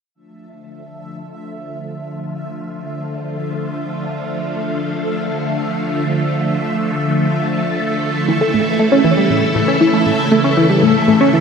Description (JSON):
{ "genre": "ambient, sequencer-driven space music", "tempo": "118 BPM", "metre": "4/4", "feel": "straight", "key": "D harmonic minor", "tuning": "A4 = 441 Hz", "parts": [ { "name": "phased string machine", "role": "sustained chords", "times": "0.1-11.4 s", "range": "C#3 to A4", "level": "-18 LUFS", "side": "equal", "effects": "ensemble chorus, phaser" }, { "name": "bubbling stepped-filter texture", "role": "texture", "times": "0.5-11.4 s", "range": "E5", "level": "-26 LUFS", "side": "right 1 dB", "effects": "chorus, built-in reverb" }, { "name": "tight sequenced synth", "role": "riff", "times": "8.3-11.4 s", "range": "A2 to C#4", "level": "-13 LUFS", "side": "equal", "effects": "chorus, phaser, analog delay" } ], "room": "wet huge ambient reverb, RT60 7.8 s", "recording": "none", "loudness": "-14 LUFS", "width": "side -6 dB against mid", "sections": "0.1-11.4 A section", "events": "fade-in on string machine 0.1-11.4; fade-in on synth texture 0.1-11.4", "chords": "0.1 Dm; 8.3 A", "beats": "| 0.15 0.66 1.17 1.67 | 2.18 2.69 3.20 3.71 | 4.22 4.72 5.23 5.74 | 6.25 6.76 7.27 7.78 | 8.28 8.79 9.30 9.81 | 10.32 10.83 11.33" }